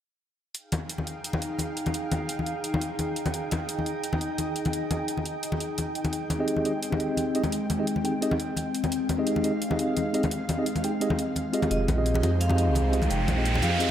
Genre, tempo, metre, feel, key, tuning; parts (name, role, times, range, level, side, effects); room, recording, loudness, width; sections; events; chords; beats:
liquid drum and bass; 172 BPM; 4/4; swing 53% on 16ths; F minor; A4 = 440 Hz
glassy FM pad; sustained chords; 0.8-13.9 s; Ab3 to G5; -31 LUFS; left 1 dB; ensemble chorus, built-in reverb
electronic hi-hat; drums; 0.5-13.9 s; -36 LUFS; right 1 dB; overdrive
congas; percussion; 0.7-13.7 s; -31 LUFS; left 2 dB
mellow tine electric piano; accompaniment; 6.4-13.9 s; C4 to G5; -28 LUFS; equal; fast stereo tremolo, analog delay
vibraphone with medium hard mallets; melody; 11.7-13.9 s; Eb5 to G5; -32 LUFS; right 1 dB; tape echo
swelling detuned saw bass; bass; 11.7-13.9 s; F1 to F2; -25 LUFS; right 1 dB
riser; sound effects; 12.4-13.9 s; -31 LUFS; right 2 dB
wet lush hall reverb, RT60 1.6 s, digital ambience; dreamy mix soaked in reverb; -25 LUFS; side -10 dB against mid
0.5-11.7 A section; 11.7-13.9 B section
build-up 11.7-13.9; riser 12.4-13.9
0.5 Fm9; 6.1 Abmaj7; 11.7 Fm9
| 0.55 0.90 1.25 1.59 | 1.94 2.29 2.64 2.99 | 3.34 3.69 4.04 4.38 | 4.73 5.08 5.43 5.78 | 6.13 6.48 6.83 7.17 | 7.52 7.87 8.22 8.57 | 8.92 9.27 9.62 9.97 | 10.31 10.66 11.01 11.36 | 11.71 12.06 12.41 12.76 | 13.11 13.45 13.80